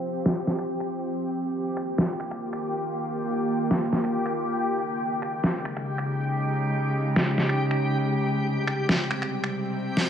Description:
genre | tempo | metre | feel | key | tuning
deep dubstep | 139 BPM | 4/4 | half-time | unclear | A4 = 440 Hz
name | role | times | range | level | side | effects
bowed-like drone | sustained chords | 0.0-10.1 s | C3 to G4 | -27 LUFS | equal | built-in reverb
backwards swelling texture | texture | 0.0-10.1 s | G4 | -31 LUFS | left 1 dB | built-in reverb
electronic snare drum and finger snaps | drums | 0.3-10.1 s | none | -25 LUFS | equal | overdrive, low-pass filter on cymbals, low-pass filter on hats, low-pass filter on snare
room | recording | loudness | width
wet echo chamber reverb, RT60 1.5 s, digital ambience | vinyl crackle, low-pass filter | -24 LUFS | side -8 dB against mid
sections
0.0-10.1 A section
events
filter sweep on drum 0.0-10.1; filter sweep 0.0-10.1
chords
0.0 F5; 1.1 Eb; 4.6 Db5; 8.0 C5

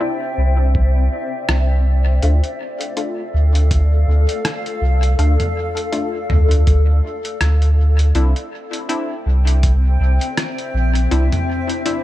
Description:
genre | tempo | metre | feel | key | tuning
ambient dub | 81 BPM | 4/4 | swing 57% on 16ths | D minor | A4 = 441 Hz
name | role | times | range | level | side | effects
granular cloud pad | sustained chords | 0.0-12.0 s | C4 to G5 | -24 LUFS | left 2 dB | built-in reverb
filtered dub chord stab | stabs | 0.0-12.0 s | A3 to F4 | -26 LUFS | left 2 dB | ensemble chorus, dub echo
warm sub bass | bass | 0.4-11.3 s | Bb1 to D2 | -13 LUFS | equal | tube saturation
electronic kick drum | drums | 0.7-9.8 s | none | -18 LUFS | equal | overdrive
lo-fi sampler-style drum kit | drums | 1.5-12.0 s | hi-hat, rim click, toms | -24 LUFS | equal | overdrive, dub echo
room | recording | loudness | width
little or no reverb | none | -15 LUFS | side -14 dB against mid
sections
0.0-12.0 A section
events
none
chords
0.0 Cadd9; 2.2 Dm; 8.2 Cadd9

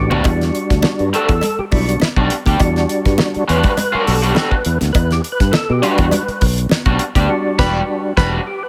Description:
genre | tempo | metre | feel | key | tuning
funk | 102 BPM | 4/4 | straight | E minor | A4 = 440 Hz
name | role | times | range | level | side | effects
percussive tonewheel organ | stabs | 0.0-8.7 s | G3 to B4 | -22 LUFS | equal | overdrive, chorus vibrato, slow rotary speaker
fingered electric bass | bass | 0.0-8.4 s | E1 to B2 | -20 LUFS | equal | none
raw garage guitar | accompaniment | 0.1-8.4 s | G3 to G4 | -24 LUFS | equal | overdrive
damped 70s drum kit | drums | 0.1-8.3 s | crash cymbal, hi-hat, kick drum, snare drum, toms | -20 LUFS | equal | none
congas | percussion | 0.1-7.3 s | none | -28 LUFS | equal | none
cowbell | percussion | 0.2-6.9 s | none | -30 LUFS | equal | none
mellow tenor saxophone | second line | 7.6-8.3 s | B4 | -25 LUFS | equal | none
room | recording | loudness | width
light reverb, studio ambience | none | -16 LUFS | mono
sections
0.3-8.7 A section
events
drum fill 0.0; tonewheel organ solo 0.3-8.7; band accent 7.3-8.7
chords
0.3 Em9

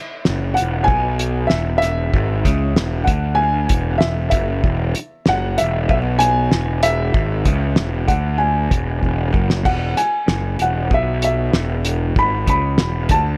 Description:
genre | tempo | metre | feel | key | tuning
indie rock | 96 BPM | 4/4 | straight | E major | A4 = 440 Hz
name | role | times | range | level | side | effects
dark upright piano | melody | 0.0-13.4 s | E5 to B5 | -23 LUFS | equal | analog delay
twangy electric guitar | riff | 0.3-13.4 s | E2 to D3 | -33 LUFS | equal | spring reverb
fuzz picked electric bass | bass | 0.3-13.4 s | E1 to D2 | -22 LUFS | equal | overdrive
cloth-damped thuddy drum kit | drums | 0.3-13.2 s | crash cymbal, hi-hat, kick drum, snare drum | -22 LUFS | equal | none
room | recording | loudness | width
little or no reverb | none | -18 LUFS | mono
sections
0.0-13.4 A section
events
drum fill 9.0-9.7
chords
0.0 E

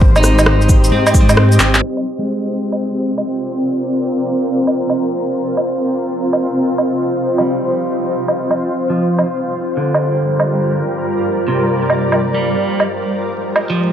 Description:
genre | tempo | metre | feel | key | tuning
future garage | 133 BPM | 4/4 | swing 66% on 16ths | unclear | A4 = 440 Hz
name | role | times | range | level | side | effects
granular cloud pad | sustained chords | 0.0-13.9 s | G3 to Eb5 | -17 LUFS | equal | built-in reverb, sidechain pumping
dark detuned saw bass | bass | 0.0-1.8 s | Ab1 to Ab2 | -13 LUFS | equal | sidechain pumping
electronic kick drum | drums | 0.0-1.3 s | none | -11 LUFS | equal | studio reverb
wind-like tuned noise texture | texture | 0.0-13.9 s | C5 | -24 LUFS | left 1 dB | built-in reverb
clean electric guitar | accompaniment | 0.2-3.2, 7.4-13.9 s | C3 to Eb4 | -21 LUFS | right 1 dB | vintage 12-bit sampler grit, sidechain pumping, tape echo
electronic shaker, woodblock, rim click, cabasa and handclaps | drums | 0.2-13.7 s | none | -16 LUFS | right 1 dB | low-pass filter on perc, studio reverb, low-pass filter on snare
room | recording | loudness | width
light reverb | dry, gritty hardware recording, vinyl crackle, low-pass filter | -13 LUFS | side -9 dB against mid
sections
0.0-1.8 A section; 1.8-13.9 B section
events
drum fill 1.6; band accent 1.7; filter sweep 1.8-13.9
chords
0.0 Abmaj7; 1.8 Bb7; 5.4 F5; 9.0 Gm7; 12.6 Abmaj7

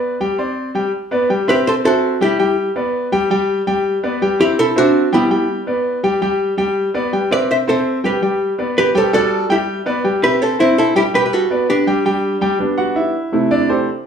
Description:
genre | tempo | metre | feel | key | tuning
latin | 165 BPM | 4/4 | straight | G major | A4 = 440 Hz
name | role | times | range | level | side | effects
clear concert grand piano | accompaniment | 0.0-13.9 s | C3 to G5 | -16 LUFS | equal | none
archtop guitar, miked and amplified | melody | 1.5-12.4 s | B3 to E5 | -15 LUFS | right 1 dB | plate reverb
room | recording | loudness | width
moderate studio reverb, RT60 0.8 s | studio reverb | -14 LUFS | side -7 dB against mid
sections
0.9-12.6 A section; 12.6-14.1 B section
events
grand piano solo 12.6-14.1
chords
0.2 D7sus4; 0.9 G; 1.7 C6; 2.4 Em7; 3.1 N.C.; 3.9 G; 5.3 G6; 6.0 N.C.; 6.8 G; 7.5 C6; 8.2 G; 8.9 Dsus4; 9.7 G; 10.4 C6; 11.1 Gmaj9; 11.9 Dsus4; 12.6 G; 13.3 C6

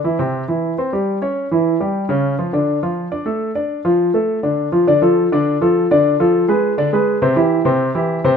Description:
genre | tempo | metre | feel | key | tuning
jazz | 205 BPM | 4/4 | straight | D minor | A4 = 440 Hz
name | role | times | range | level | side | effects
warm baby grand piano | solo | 0.0-8.4 s | C3 to D5 | -14 LUFS | equal | none
room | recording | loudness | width
moderate large studio reverb, RT60 1.0 s | minimal, uncompressed stereo recording | -14 LUFS | side -7 dB against mid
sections
0.0-4.9 A section; 4.9-8.4 B section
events
none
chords
0.2 C; 1.4 C#dim; 2.5 Dm; 6.0 Bm7b5; 6.6 G#dim/D; 7.2 C

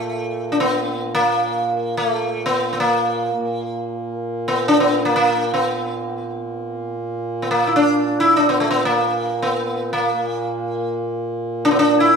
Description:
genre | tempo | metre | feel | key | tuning
indian classical, Hindustani | free time | none | none | Bb raga marwa | A4 = 440 Hz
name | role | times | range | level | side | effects
sitar | melody | 0.0-12.2 s | A3 to E4 | -17 LUFS | equal | none
hand-pumped harmonium | drone | 0.0-12.2 s | Bb2 to Bb3 | -25 LUFS | right 1 dB | none
room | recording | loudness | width
wet large studio reverb, RT60 1.1 s | band playing live in one room | -18 LUFS | side -6 dB against mid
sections
0.0-12.2 A section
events
none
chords
none

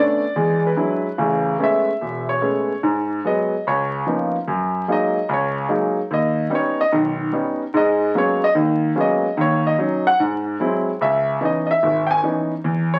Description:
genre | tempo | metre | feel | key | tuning
solo jazz | 147 BPM | 4/4 | swing 67% on 8ths | unclear | A4 = 440 Hz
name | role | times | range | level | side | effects
warm concert grand piano | solo | 0.0-13.0 s | E1 to G#5 | -20 LUFS | equal | none
room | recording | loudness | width
wet studio reverb, RT60 0.8 s | very old 78 rpm record, vinyl crackle | -20 LUFS | mono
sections
0.0-11.0 A section; 11.0-13.0 A section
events
grand piano solo 0.0-13.0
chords
0.4 E9; 1.2 Amaj9; 2.8 G#m7; 3.6 C#13; 4.5 F#69; 6.1 D#aug7; 7.7 G#m11; 9.4 D#m7; 10.2 G#aug7; 11.0 C#m9

